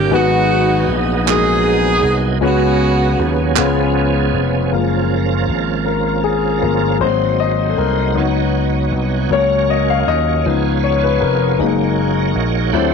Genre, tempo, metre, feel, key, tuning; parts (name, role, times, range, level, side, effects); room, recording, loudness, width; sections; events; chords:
slow gospel; 52 BPM (dotted quarters); 6/8; straight; F# major; A4 = 440 Hz
edgy saxophone section; melody; 0.0-3.5 s; B3 to G#4; -16 LUFS; right 3 dB
warm grand piano; accompaniment; 0.0-12.9 s; G#2 to G5; -17 LUFS; left 11 dB
bright tonewheel organ; sustained chords; 0.0-12.9 s; D#3 to G5; -21 LUFS; right 14 dB; fast rotary speaker, overdrive, chorus vibrato
vintage slap bass; bass; 0.0-12.9 s; E#1 to D#2; -18 LUFS; right 2 dB; transformer saturation
group handclap; percussion; 1.3-3.9 s; -18 LUFS; right 17 dB
light reverb, small room ambience; 1960s-style stereo with parts hard left and right; -13 LUFS; side -5 dB against mid
0.0-4.7 A section; 4.7-12.9 B section
grand piano solo 4.7-12.9; tonewheel organ fill 12.7
0.1 G#m7; 2.4 C#7sus4; 3.6 C#7; 4.7 F#maj7; 7.0 G#7; 8.2 C#9sus4; 9.3 F#/C#; 10.4 C#7; 11.6 F#6